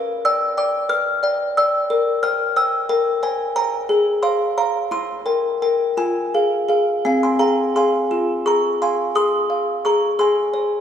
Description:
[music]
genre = classical, lullaby for music box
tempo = 55-61 BPM (dotted quarters)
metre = 6/8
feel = rubato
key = F minor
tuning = A4 = 440 Hz
[part]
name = music box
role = solo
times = 0.0-10.8 s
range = C4 to F6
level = -17 LUFS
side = left 1 dB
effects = none
[sound]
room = wet concert hall reverb, RT60 2.1 s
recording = heard from further back in the room, small room ambience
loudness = -17 LUFS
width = side -8 dB against mid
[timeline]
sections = 0.0-8.1 A section; 8.1-10.8 A section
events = none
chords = 0.0 G7/B; 1.9 C5/Bb; 3.9 Fm/Ab; 4.9 C7/E; 6.0 Fm; 10.2 Fm/Ab (rootless)

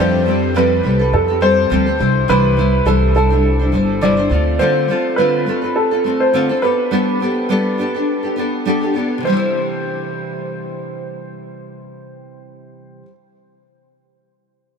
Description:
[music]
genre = pop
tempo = 104 BPM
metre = 4/4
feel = swing 55% on 16ths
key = C major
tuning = A4 = 440 Hz
[part]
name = warm upright piano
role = melody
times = 0.0-13.0 s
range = A4 to D5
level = -18 LUFS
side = right 1 dB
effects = lush chorus, diffuse ambient delay
[part]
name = nylon-string guitar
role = accompaniment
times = 0.0-13.1 s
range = C3 to C5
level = -18 LUFS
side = left 1 dB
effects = double-tracked left and right
[part]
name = mandolin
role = arpeggios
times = 0.0-0.5 s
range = A3 to G5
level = -37 LUFS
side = right 1 dB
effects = none
[part]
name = upright bass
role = bass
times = 0.0-4.6 s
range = G1 to F2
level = -18 LUFS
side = equal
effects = none
[sound]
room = moderate huge ambient reverb, RT60 4.6 s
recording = dreamy mix soaked in reverb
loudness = -14 LUFS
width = side -6 dB against mid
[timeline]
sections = 0.0-9.2 A section; 9.2-11.6 B section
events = none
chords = 0.0 Fadd9; 2.0 Cadd9; 4.3 Dm7; 6.6 Gadd9; 9.2 Cadd9

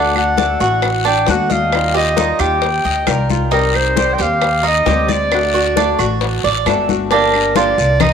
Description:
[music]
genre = latin, Cuban son and guajira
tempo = 134 BPM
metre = 4/4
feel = straight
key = G minor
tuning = A4 = 439 Hz
[part]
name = warm clarinet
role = melody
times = 0.0-8.1 s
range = Bb4 to G5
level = -17 LUFS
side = equal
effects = none
[part]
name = flamenco guitar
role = accompaniment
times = 0.0-8.1 s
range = C3 to G4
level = -22 LUFS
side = left 9 dB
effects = none
[part]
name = Cuban tres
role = arpeggios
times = 0.0-8.1 s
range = D4 to Eb5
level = -18 LUFS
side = right 8 dB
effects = slapback echo
[part]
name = upright bass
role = bass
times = 0.0-8.1 s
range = G1 to Eb2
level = -21 LUFS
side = equal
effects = none
[part]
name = claves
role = percussion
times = 0.2-8.1 s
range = none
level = -26 LUFS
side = right 14 dB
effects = none
[part]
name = congas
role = percussion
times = 0.2-8.1 s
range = none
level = -23 LUFS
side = left 9 dB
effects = none
[part]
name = bongos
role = percussion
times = 0.4-8.1 s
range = none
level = -25 LUFS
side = left 13 dB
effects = none
[part]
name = guiro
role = percussion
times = 0.4-8.1 s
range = none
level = -27 LUFS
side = left 13 dB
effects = none
[sound]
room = moderate plate reverb, RT60 2.8 s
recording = 1960s-style stereo with parts hard left and right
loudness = -13 LUFS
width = side -7 dB against mid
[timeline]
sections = 0.0-7.1 A section; 7.1-8.1 B section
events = none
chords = 0.0 D; 1.7 Ebadd9; 3.5 Cm; 5.3 D; 7.1 Gm7

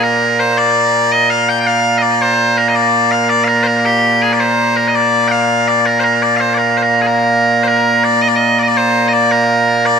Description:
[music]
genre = scottish traditional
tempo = 110 BPM (dotted quarters)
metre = 6/8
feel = straight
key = Bb major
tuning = A4 = 443 Hz
[part]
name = loud bright bagpipes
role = solo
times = 0.0-10.0 s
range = Bb2 to G5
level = -10 LUFS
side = equal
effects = slapback echo
[sound]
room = moderate huge ambient reverb, RT60 6.4 s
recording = none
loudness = -10 LUFS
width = side -6 dB against mid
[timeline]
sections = 0.0-7.7 A section; 7.7-10.0 B section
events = none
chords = none

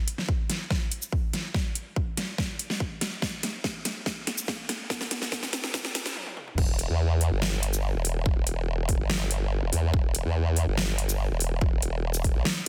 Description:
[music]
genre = heavy wobble dubstep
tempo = 143 BPM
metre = 4/4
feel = half-time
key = E phrygian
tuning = A4 = 440 Hz
[part]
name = dubstep drum kit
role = drums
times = 0.1-12.5 s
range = crash cymbal, hi-hat, shaker, snare drum, toms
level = -32 LUFS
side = equal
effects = studio reverb
[part]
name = electronic kick drum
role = drums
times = 0.3-12.3 s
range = none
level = -30 LUFS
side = equal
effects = overdrive, studio reverb
[part]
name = formant-sweep wobble bass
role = bass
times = 6.6-12.4 s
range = E1 to E2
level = -28 LUFS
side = equal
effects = chorus, overdrive
[sound]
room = light reverb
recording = dense, heavily limited modern master, high-pass filter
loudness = -28 LUFS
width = mono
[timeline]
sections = 0.0-6.6 A section; 6.6-12.7 B section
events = build-up 0.0-6.6; drum fill 0.0-6.2, 6.2-6.6; filter sweep 0.0-6.6; stop 6.2-6.6; drop 6.6-12.7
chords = none

